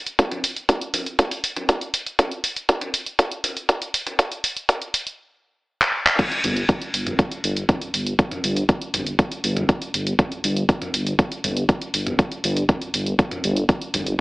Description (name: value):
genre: melodic techno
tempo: 120 BPM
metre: 4/4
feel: straight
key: unclear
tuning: A4 = 440 Hz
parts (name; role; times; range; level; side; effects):
- house drum kit; drums; 0.1-14.2 s; crash cymbal, handclaps, hi-hat, toms; -24 LUFS; equal; none
- electronic kick drum; drums; 0.2-13.8 s; none; -20 LUFS; equal; high-pass filter on kick, high-pass filter on room
- dark detuned saw bass; bass; 6.4-14.1 s; G1; -24 LUFS; equal; sidechain pumping
room: little or no reverb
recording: high-pass filter, AM radio sound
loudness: -20 LUFS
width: side -23 dB against mid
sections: 0.0-6.2 A section; 6.2-14.2 B section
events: build-up 0.0-6.2; drum fill 5.8-6.2; drop 6.2-14.2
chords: none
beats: | 0.19 0.69 1.19 1.69 | 2.19 2.69 3.19 3.69 | 4.19 4.69 5.19 5.69 | 6.19 6.69 7.19 7.69 | 8.19 8.69 9.19 9.69 | 10.19 10.69 11.19 11.69 | 12.19 12.69 13.19 13.69